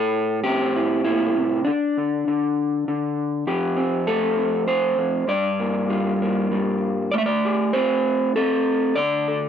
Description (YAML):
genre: folk, solo fingerstyle acoustic guitar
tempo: 99 BPM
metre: 3/4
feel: straight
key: unclear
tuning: A4 = 440 Hz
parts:
  - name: electric guitar through a small old amp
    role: solo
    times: 0.0-9.5 s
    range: F2 to E5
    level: -19 LUFS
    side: equal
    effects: none
room: little or no reverb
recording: dry, close 1970s-style studio recording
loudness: -19 LUFS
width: side -8 dB against mid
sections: 0.0-9.5 A section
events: none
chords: 0.0 Am7; 1.7 N.C.; 3.5 Fadd9; 5.3 Gm7; 7.1 Am7; 9.0 D5